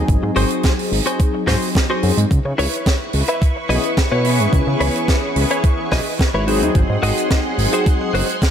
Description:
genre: nu-disco, nu disco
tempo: 108 BPM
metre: 4/4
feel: straight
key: C# minor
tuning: A4 = 440 Hz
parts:
  - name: mellow synth brass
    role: accompaniment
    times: 0.0-8.3 s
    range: E3 to G#4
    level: -22 LUFS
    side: left 1 dB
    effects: chorus, sidechain pumping, analog delay
  - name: fat analog bass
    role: bass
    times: 0.0-8.2 s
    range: F#1 to C#3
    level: -18 LUFS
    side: equal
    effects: none
  - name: electronic kick drum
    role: drums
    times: 0.1-8.5 s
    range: none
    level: -16 LUFS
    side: equal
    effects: overdrive
  - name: tight funk drum kit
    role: drums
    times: 0.1-8.5 s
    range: hi-hat, snare drum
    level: -24 LUFS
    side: right 2 dB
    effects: none
  - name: direct-recorded clean electric guitar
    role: riff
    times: 0.2-8.4 s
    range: E4 to E5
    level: -23 LUFS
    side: left 2 dB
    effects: analog chorus, analog delay
  - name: string machine, full ensemble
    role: sustained chords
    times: 2.3-8.5 s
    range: E4 to C#6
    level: -24 LUFS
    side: equal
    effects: ensemble chorus, sidechain pumping
room: light reverb, studio reverb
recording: none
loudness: -15 LUFS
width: side -8 dB against mid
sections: 0.0-8.5 A section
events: none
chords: 0.0 G#7; 2.3 C#m7; 6.5 G#7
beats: | 0.09 0.64 1.20 1.75 | 2.31 2.87 3.42 3.98 | 4.53 5.09 5.64 6.20 | 6.75 7.31 7.87 8.42

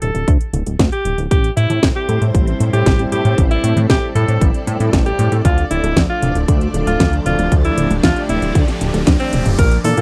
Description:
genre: italo disco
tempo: 116 BPM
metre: 4/4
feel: straight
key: D minor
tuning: A4 = 441 Hz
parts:
  - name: bright alto saxophone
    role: melody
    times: 0.0-10.0 s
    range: C4 to Bb4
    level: -24 LUFS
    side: equal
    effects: tape echo
  - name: unison pluck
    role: arpeggios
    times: 0.0-10.0 s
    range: D2 to A3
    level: -25 LUFS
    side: equal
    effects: none
  - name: chorused synth bass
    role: bass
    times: 0.0-10.0 s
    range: D1 to Bb2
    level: -20 LUFS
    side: equal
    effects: none
  - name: house drum kit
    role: drums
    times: 0.0-10.0 s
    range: crash cymbal, hi-hat, snare drum, toms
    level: -23 LUFS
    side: equal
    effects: none
  - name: electronic kick drum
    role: drums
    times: 0.3-9.7 s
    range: none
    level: -18 LUFS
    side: equal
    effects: none
  - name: string machine, full ensemble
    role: sustained chords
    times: 1.7-10.0 s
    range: F3 to D5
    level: -25 LUFS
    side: equal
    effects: ensemble chorus
  - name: riser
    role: sound effects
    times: 6.8-9.6 s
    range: none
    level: -34 LUFS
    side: equal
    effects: none
room: little or no reverb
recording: dry, close 1970s-style studio recording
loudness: -15 LUFS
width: mono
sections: 0.0-9.6 A section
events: riser 6.8-9.6; drum fill 9.2-9.6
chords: 0.0 D5; 1.3 Am7; 5.4 Dm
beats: 0.28 0.79 | 1.31 1.83 2.35 2.86 | 3.38 3.90 4.41 4.93 | 5.45 5.96 6.48 7.00 | 7.52 8.03 8.55 9.07 | 9.59

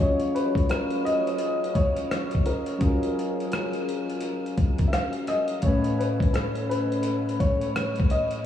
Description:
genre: lo-fi hip hop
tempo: 85 BPM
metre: 4/4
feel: swing 65% on 16ths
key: unclear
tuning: A4 = 442 Hz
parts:
  - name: dark upright piano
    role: melody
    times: 0.0-8.5 s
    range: G#4 to E#5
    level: -29 LUFS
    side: left 2 dB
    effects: low-pass filter, diffuse ambient delay
  - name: soft electric-piano-like synth keys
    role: accompaniment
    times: 0.0-8.5 s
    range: A2 to G#5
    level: -27 LUFS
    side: left 1 dB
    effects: chorus, low-pass filter
  - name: dusty soul sampler-style drum kit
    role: drums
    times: 0.2-8.4 s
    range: hi-hat, kick drum, rim click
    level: -26 LUFS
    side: equal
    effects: none
room: wet huge ambient reverb, RT60 8.9 s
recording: dreamy mix soaked in reverb, vinyl crackle, small room ambience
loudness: -23 LUFS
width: side -10 dB against mid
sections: 0.0-8.5 A section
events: none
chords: 0.0 F#maj9; 5.6 Amaj9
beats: 0.69 1.40 2.10 | 2.81 3.52 4.22 4.93 | 5.63 6.34 7.04 7.75 | 8.46

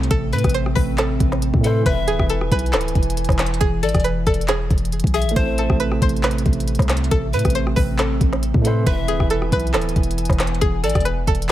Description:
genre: hip hop, trap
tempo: 137 BPM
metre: 4/4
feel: half-time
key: A harmonic minor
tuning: A4 = 441 Hz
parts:
  - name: string-like resonator pluck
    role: melody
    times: 0.0-11.5 s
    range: G#4 to C5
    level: -24 LUFS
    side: equal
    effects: chorus
  - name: dark baby grand piano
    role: accompaniment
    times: 0.0-11.5 s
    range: E3 to C5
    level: -28 LUFS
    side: right 4 dB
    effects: none
  - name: warbly tape-like pad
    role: sustained chords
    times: 0.0-11.5 s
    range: C3 to G#5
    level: -27 LUFS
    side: right 1 dB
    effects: chorus, built-in reverb
  - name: warm 808-style bass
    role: bass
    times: 0.0-11.5 s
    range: D1 to A2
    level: -22 LUFS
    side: equal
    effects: none
  - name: organic electronic drum kit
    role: drums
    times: 0.0-11.5 s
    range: handclaps, hi-hat, kick drum, rim click, snare drum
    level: -20 LUFS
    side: equal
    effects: none
  - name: bright reedy pan flute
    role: second line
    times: 0.3-11.0 s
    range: A4 to E5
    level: -28 LUFS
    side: left 5 dB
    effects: digital delay
room: digital ambience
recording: none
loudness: -16 LUFS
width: side -13 dB against mid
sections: 0.0-11.5 A section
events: none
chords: 0.0 Amadd9; 1.9 E; 5.4 Amadd9; 8.9 E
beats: | 0.11 0.55 0.98 1.42 | 1.86 2.30 2.73 3.17 | 3.61 4.05 4.49 4.92 | 5.36 5.80 6.24 6.68 | 7.11 7.55 7.99 8.43 | 8.87 9.30 9.74 10.18 | 10.62 11.06 11.49

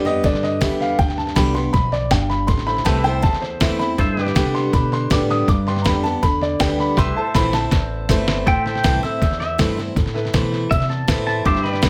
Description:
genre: honky-tonk and classic country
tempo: 160 BPM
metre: 4/4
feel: straight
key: A minor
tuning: A4 = 440 Hz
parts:
  - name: clear upright piano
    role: second line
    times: 0.0-8.3 s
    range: C5 to D#6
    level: -25 LUFS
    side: equal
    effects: none
  - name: picked steel-string acoustic guitar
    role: accompaniment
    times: 0.0-11.9 s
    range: E2 to G4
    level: -26 LUFS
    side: equal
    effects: none
  - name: pedal steel guitar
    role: sustained chords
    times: 0.0-11.9 s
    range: G4 to E5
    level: -32 LUFS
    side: equal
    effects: none
  - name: upright bass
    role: bass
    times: 0.0-11.9 s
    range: G1 to C3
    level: -27 LUFS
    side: equal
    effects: none
  - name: lo-fi sampler-style drum kit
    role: drums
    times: 0.1-11.9 s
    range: hi-hat, kick drum, snare drum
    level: -23 LUFS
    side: equal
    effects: none
  - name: bright grand piano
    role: accompaniment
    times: 2.7-11.9 s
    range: D4 to C5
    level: -33 LUFS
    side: equal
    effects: none
  - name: pedal steel guitar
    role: melody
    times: 8.5-11.9 s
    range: E5 to D6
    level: -24 LUFS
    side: equal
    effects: none
room: light reverb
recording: none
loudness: -19 LUFS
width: mono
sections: 0.0-8.5 A section; 8.5-11.9 A section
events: upright piano solo 0.0-8.5; drum fill 7.0-8.5; pedal steel guitar solo 8.5-11.9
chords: 0.0 G; 2.5 Am; 4.0 G; 7.0 Am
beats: 0.24 0.61 | 0.99 1.36 1.74 2.11 | 2.49 2.86 3.23 3.61 | 3.98 4.36 4.73 5.11 | 5.48 5.85 6.23 6.60 | 6.97 7.35 7.72 8.10 | 8.47 8.84 9.22 9.59 | 9.96 10.34 10.71 11.09 | 11.46 11.83

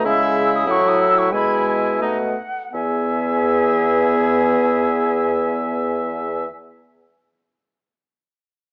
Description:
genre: quick classical-period movement for wind quintet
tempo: 80-98 BPM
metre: 2/4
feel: straight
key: E major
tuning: A4 = 441 Hz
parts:
  - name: clear French horn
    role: accompaniment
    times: 0.0-6.5 s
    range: F#3 to B3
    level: -26 LUFS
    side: equal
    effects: none
  - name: warm bassoon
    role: bass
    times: 0.0-6.5 s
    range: E2 to C#3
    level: -24 LUFS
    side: equal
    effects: none
  - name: mellow silver concert flute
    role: melody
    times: 0.1-6.5 s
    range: F#5 to E6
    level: -26 LUFS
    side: equal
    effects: none
  - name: warm oboe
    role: second line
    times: 0.1-6.5 s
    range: D#4 to E5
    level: -26 LUFS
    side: equal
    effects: none
  - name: clear clarinet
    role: accompaniment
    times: 0.1-6.5 s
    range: G#4 to G#5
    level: -27 LUFS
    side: equal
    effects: none
room: moderate recital hall reverb, RT60 1.4 s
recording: worn, warbling old tape, cassette tape, warbly pitch drift, small speaker sound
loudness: -19 LUFS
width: mono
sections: 0.0-2.7 A section; 2.7-5.7 B section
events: slowing down 0.0-2.7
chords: 0.1 C#m; 0.7 F#m7/A; 1.3 E/B; 2.0 B7; 2.7 E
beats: | 0.06 0.69 | 1.33 2.01 | 2.74 3.48 | 4.22 4.96

